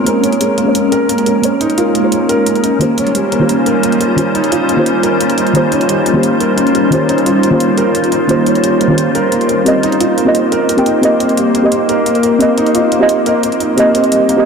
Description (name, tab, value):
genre	liquid drum and bass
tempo	175 BPM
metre	4/4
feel	straight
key	unclear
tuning	A4 = 441 Hz
part	deep mellow chord stab	accompaniment	0.0-14.5 s	Eb3 to G5	-16 LUFS	equal	chorus, ping-pong delay
part	glassy FM pad	sustained chords	0.0-14.5 s	G3 to C5	-14 LUFS	left 1 dB	ensemble chorus, built-in reverb
part	felt-muted upright piano	arpeggios	0.0-14.5 s	G3 to Bb4	-15 LUFS	right 1 dB	low-pass filter, ping-pong delay
part	electronic hi-hat	drums	0.1-14.4 s	none	-22 LUFS	right 1 dB	overdrive
room	wet huge ambient reverb, RT60 6.8 s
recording	dreamy mix soaked in reverb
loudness	-10 LUFS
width	side -6 dB against mid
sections	0.0-14.5 A section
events	filter sweep on synth stab 0.0-14.5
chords	0.0 Bbm9; 2.8 Eb13; 9.7 Cm7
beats	| 0.06 0.41 0.75 1.09 | 1.44 1.78 2.12 2.46 | 2.81 3.15 3.49 3.83 | 4.18 4.52 4.86 5.21 | 5.55 5.89 6.24 6.58 | 6.92 7.26 7.61 7.95 | 8.29 8.63 8.98 9.32 | 9.66 10.01 10.35 10.69 | 11.04 11.38 11.72 12.06 | 12.41 12.75 13.09 13.44 | 13.78 14.12